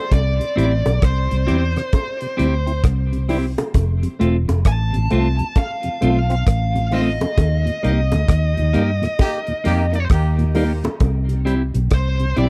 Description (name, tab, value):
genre	roots reggae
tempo	66 BPM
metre	4/4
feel	swing 63% on 16ths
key	unclear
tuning	A4 = 440 Hz
part	high-gain lead guitar	melody	0.0-12.5 s	C5 to A5	-28 LUFS	equal	distortion, tape echo
part	vintage muted fingered electric bass	bass	0.1-12.5 s	E1 to G2	-21 LUFS	equal	none
part	cloth-damped thuddy drum kit	drums	0.1-12.5 s	hi-hat, kick drum, rim click	-18 LUFS	equal	none
part	bongos	percussion	0.1-12.5 s	none	-29 LUFS	equal	none
part	tonewheel organ	accompaniment	0.4-12.5 s	Eb2 to F4	-29 LUFS	equal	overdrive, slow rotary speaker
part	clean electric guitar	accompaniment	0.6-12.5 s	A3 to G4	-26 LUFS	equal	tape echo
part	clear horn section	second line	9.2-10.8 s	Eb3 to G4	-30 LUFS	equal	tape echo
room	studio reverb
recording	dry, close 1970s-style studio recording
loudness	-19 LUFS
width	mono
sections	0.0-11.0 A section; 11.0-12.5 B section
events	band accent 7.4-11.0; lead electric guitar solo 11.0-12.5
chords	0.0 C; 3.7 F; 7.4 Eb; 11.0 C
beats	| 0.11 1.02 1.93 2.84 | 3.75 4.66 5.56 6.47 | 7.38 8.29 9.20 10.11 | 11.01 11.92